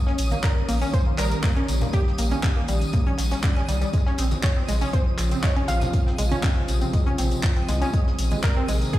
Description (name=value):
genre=progressive house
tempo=120 BPM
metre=4/4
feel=straight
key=unclear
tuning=A4 = 440 Hz
part: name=lush unison pad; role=sustained chords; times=0.0-9.0 s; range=C3 to Db4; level=-31 LUFS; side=equal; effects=chorus, sidechain pumping
part: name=twinkling granular texture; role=texture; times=0.0-9.0 s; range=Eb6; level=-40 LUFS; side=equal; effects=built-in reverb, sidechain pumping
part: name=wide unison pluck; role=arpeggios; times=0.1-8.7 s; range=G3 to Db4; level=-29 LUFS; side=right 1 dB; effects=auto-pan, sidechain pumping, dub echo
part: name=modern studio drum kit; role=drums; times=0.1-9.0 s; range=hi-hat, snare drum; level=-42 LUFS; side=left 2 dB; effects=none
part: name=round analog bass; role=bass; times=0.2-8.8 s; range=Bb1 to C2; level=-24 LUFS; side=equal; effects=sidechain pumping
part: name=deep house drum kit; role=drums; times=0.2-9.0 s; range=handclaps, hi-hat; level=-33 LUFS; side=equal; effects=overdrive
part: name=tambourine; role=percussion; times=0.2-9.0 s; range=none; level=-38 LUFS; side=left 2 dB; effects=none
part: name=congas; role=percussion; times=0.3-8.4 s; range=none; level=-34 LUFS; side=equal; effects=none
part: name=wide unison pluck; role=melody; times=0.4-9.0 s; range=G4 to F5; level=-33 LUFS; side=right 1 dB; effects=sidechain pumping, dub echo
part: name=electronic kick drum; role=drums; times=0.4-9.0 s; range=none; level=-22 LUFS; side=equal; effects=none
room=light reverb, studio ambience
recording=played on a big sound system in a bare room, large studio reverb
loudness=-20 LUFS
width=side -15 dB against mid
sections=0.0-9.0 A section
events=none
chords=0.0 Eb7/Bb; 3.9 Dbmaj7/Bb; 7.9 Ab/Bb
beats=0.43 0.94 1.44 | 1.94 2.44 2.94 3.44 | 3.94 4.43 4.93 5.43 | 5.93 6.43 6.93 7.43 | 7.93 8.44 8.94